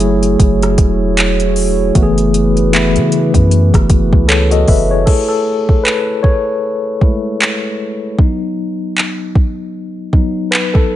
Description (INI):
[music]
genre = contemporary R&B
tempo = 77 BPM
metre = 4/4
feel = swing 58% on 16ths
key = unclear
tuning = A4 = 439 Hz
[part]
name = mellow tine electric piano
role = accompaniment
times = 0.0-11.0 s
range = E3 to E5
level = -15 LUFS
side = left 2 dB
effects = medium stereo tremolo
[part]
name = glass harmonica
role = sustained chords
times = 0.0-5.0 s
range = A3 to C#5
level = -20 LUFS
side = right 5 dB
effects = sidechain pumping
[part]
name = long sustained 808-style bass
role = bass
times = 0.0-5.1 s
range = E1 to C#3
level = -15 LUFS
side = equal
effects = none
[part]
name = smooth R&B drum kit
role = drums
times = 0.0-10.9 s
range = crash cymbal, handclaps, hi-hat, kick drum, rim click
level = -13 LUFS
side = equal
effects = overdrive
[sound]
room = light reverb, digital ambience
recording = nothing above 10.7 kHz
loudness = -11 LUFS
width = side -13 dB against mid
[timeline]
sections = 0.0-5.1 A section; 5.1-11.0 B section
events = tine electric piano solo 5.1-11.0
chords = 0.0 F#m9; 2.0 F#m11; 5.1 Amaj9; 8.2 B/F#